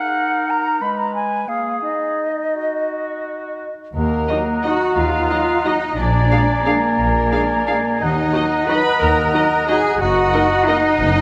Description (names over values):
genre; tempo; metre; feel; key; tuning
classical, orchestral ballroom waltz; 160-199 BPM; 3/4; rubato; Eb minor; A4 = 439 Hz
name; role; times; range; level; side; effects
clear clarinet; second line; 0.0-11.2 s; Ab3 to Eb5; -27 LUFS; equal; none
mellow concert flute; second line; 0.0-11.2 s; Eb5 to Cb6; -25 LUFS; equal; none
mellow oboe; second line; 0.0-11.2 s; Gb4 to Ab5; -28 LUFS; equal; none
muted studio cello section; bass; 3.9-11.2 s; Bb3 to Cb5; -23 LUFS; equal; none
muted studio violin section; second line; 4.0-11.2 s; Bb4 to Cb6; -28 LUFS; equal; none
muted studio double bass section; bass; 4.0-11.2 s; Gb1 to Eb2; -24 LUFS; equal; none
muted symphonic violin section; melody; 4.3-10.8 s; Eb5 to F5; -31 LUFS; equal; none
muted symphonic viola section; accompaniment; 4.3-10.8 s; D4 to Bb4; -29 LUFS; equal; none
warm French horn section; sustained chords; 4.3-10.8 s; Gb3 to Eb4; -30 LUFS; equal; none
room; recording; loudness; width
moderate scoring stage reverb, RT60 2.1 s; none; -18 LUFS; mono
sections
0.0-3.9 A section; 3.9-11.2 B section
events
none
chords
0.0 Ebm; 0.8 Abm; 1.5 Bb5; 1.8 Ebm; 6.0 Bb7; 8.0 Ebm; 10.0 Ebm/Gb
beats
0.17 0.50 | 0.82 1.14 1.48 | 1.83 2.18 2.55 | 2.89 3.24 3.60 | 3.95 4.29 4.64 | 4.97 5.30 5.65 | 5.98 6.31 6.66 | 6.99 7.32 7.67 | 8.02 8.35 8.69 | 9.02 9.35 9.69 | 10.01 10.34 10.68 | 11.01